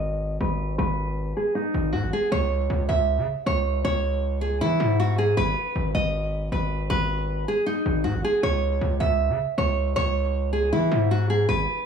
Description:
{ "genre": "hip hop", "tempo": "157 BPM", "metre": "4/4", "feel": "half-time", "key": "C# minor", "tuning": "A4 = 439 Hz", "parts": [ { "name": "nylon-string guitar", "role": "melody", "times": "0.0-11.9 s", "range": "D#4 to E5", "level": "-24 LUFS", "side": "right 1 dB", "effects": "low-pass filter, tape echo" }, { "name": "distorted 808-style bass", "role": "bass", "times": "0.0-11.7 s", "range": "G#1 to E3", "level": "-25 LUFS", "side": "equal", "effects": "distortion" } ], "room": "light reverb, small room ambience", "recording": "studio ambience", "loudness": "-22 LUFS", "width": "side -7 dB against mid", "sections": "0.0-11.9 A section", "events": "filter sweep on nylon-string guitar 0.0-2.3", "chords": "0.0 G#m; 2.3 C#m; 5.4 G#m; 8.4 C#m", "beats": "0.02 0.41 | 0.79 1.17 1.55 1.94 | 2.32 2.70 3.08 3.46 | 3.85 4.23 4.61 4.99 | 5.37 5.76 6.14 6.52 | 6.90 7.29 7.67 8.05 | 8.43 8.81 9.20 9.58 | 9.96 10.34 10.72 11.11 | 11.49" }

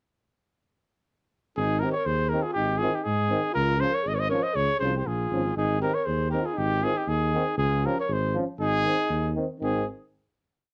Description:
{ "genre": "balkan folk", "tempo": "119 BPM", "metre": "2/4", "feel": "swing 55% on 16ths", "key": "Ab major", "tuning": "A4 = 442 Hz", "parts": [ { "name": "warm trumpet", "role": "melody", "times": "1.6-9.9 s", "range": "G4 to Eb5", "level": "-29 LUFS", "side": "equal", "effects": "none" }, { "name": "warm alto saxophone", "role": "second line", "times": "1.6-9.8 s", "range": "Eb4 to C5", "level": "-34 LUFS", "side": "equal", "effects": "none" }, { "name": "dark tuba", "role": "bass", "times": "1.6-9.8 s", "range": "Ab1 to Ab2", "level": "-31 LUFS", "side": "equal", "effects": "none" }, { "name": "bright trombone", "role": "accompaniment", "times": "1.8-9.8 s", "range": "Eb3 to F3", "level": "-35 LUFS", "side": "equal", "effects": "none" }, { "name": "mellow euphonium", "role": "accompaniment", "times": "1.8-9.8 s", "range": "C4 to Db4", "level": "-36 LUFS", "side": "equal", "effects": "none" } ], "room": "light reverb", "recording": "worn, warbling old tape, cassette tape, warbly pitch drift", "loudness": "-26 LUFS", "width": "mono", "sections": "1.6-9.6 A section; 9.6-10.6 final chord", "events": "none", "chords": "1.6 Ab; 3.6 Db; 5.6 Ab; 7.6 Db; 8.6 Ab", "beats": "| 1.57 2.07 | 2.56 3.06 | 3.56 4.07 | 4.57 5.07 | 5.57 6.08 | 6.58 7.08 | 7.59 8.09 | 8.60 9.10 | 9.60" }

